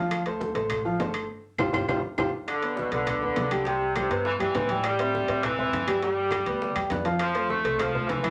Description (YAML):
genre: latin, salsa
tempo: 203 BPM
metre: 4/4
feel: straight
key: unclear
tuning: A4 = 439 Hz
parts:
  - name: clear grand piano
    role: accompaniment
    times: 0.0-8.3 s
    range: E3 to G5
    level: -30 LUFS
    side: equal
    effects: none
  - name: upright bass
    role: bass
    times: 0.0-8.3 s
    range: G1 to A2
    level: -39 LUFS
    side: equal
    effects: none
  - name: bongos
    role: percussion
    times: 0.1-8.2 s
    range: none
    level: -41 LUFS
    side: equal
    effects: none
  - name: claves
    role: percussion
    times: 0.1-8.3 s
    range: none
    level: -38 LUFS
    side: equal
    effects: none
  - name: congas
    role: percussion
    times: 0.1-8.3 s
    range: none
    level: -42 LUFS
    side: equal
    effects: none
  - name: timbales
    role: percussion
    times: 0.1-8.3 s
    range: none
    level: -37 LUFS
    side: equal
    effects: none
  - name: bright saxophone section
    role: second line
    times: 2.5-8.3 s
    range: B2 to A3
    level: -30 LUFS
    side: equal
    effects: none
room: wet studio ambience, RT60 0.5 s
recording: none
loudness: -27 LUFS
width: mono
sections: 0.0-2.5 A section; 2.5-8.3 B section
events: drum fill 1.3-2.5; band accent 1.3-2.5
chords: 0.1 Dm7; 1.3 G7sus4; 2.5 G; 3.7 Cmaj7; 4.8 Am7; 6.0 G; 7.2 F